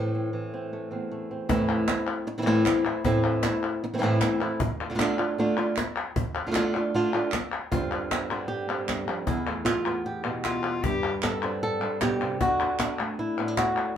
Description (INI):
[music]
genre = flamenco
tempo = 154 BPM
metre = 4/4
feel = straight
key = A minor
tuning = A4 = 440 Hz
[part]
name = flamenco guitar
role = melody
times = 0.0-14.0 s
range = E2 to A4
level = -26 LUFS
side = right 1 dB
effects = plate reverb
[part]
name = cajon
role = percussion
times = 1.5-13.8 s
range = none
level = -31 LUFS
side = left 2 dB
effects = none
[part]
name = palmas hand claps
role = percussion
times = 1.7-14.0 s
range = none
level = -32 LUFS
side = left 2 dB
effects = none
[part]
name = bright soprano saxophone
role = second line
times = 10.4-11.1 s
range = F4 to G4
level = -29 LUFS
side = left 5 dB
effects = none
[sound]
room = wet small room reverb, RT60 0.6 s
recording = heard from further back in the room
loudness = -24 LUFS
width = side -9 dB against mid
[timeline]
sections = 0.0-1.5 A section; 1.5-7.7 B section; 7.7-14.0 C section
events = break 0.0-1.5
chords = 0.0 Am; 4.6 Dm; 7.7 Gsus4; 9.3 Esus4; 10.8 Gsus4; 12.4 D